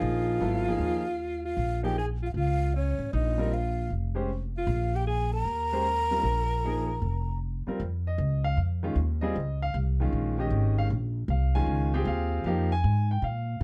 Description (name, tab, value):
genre	modal jazz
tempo	154 BPM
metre	4/4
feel	swing 66% on 8ths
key	Bb dorian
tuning	A4 = 440 Hz
part	breathy mellow concert flute	melody	0.0-7.4 s	Db5 to Bb5	-34 LUFS	equal	plate reverb
part	bright alto saxophone	second line	0.0-7.4 s	Db4 to Bb4	-36 LUFS	equal	none
part	clear grand piano	accompaniment	0.0-13.6 s	Eb3 to Ab5	-33 LUFS	equal	none
part	upright bass	bass	0.0-13.6 s	F1 to Bb2	-30 LUFS	equal	none
room	little or no reverb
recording	dark, warm production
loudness	-28 LUFS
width	mono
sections	0.0-7.8 A section; 7.8-13.6 B section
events	none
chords	0.0 Ebsus2; 1.6 Bbm; 4.7 Ebsus2/Bb; 7.8 Bbm7 (rootless); 10.9 Ebsus2/Bb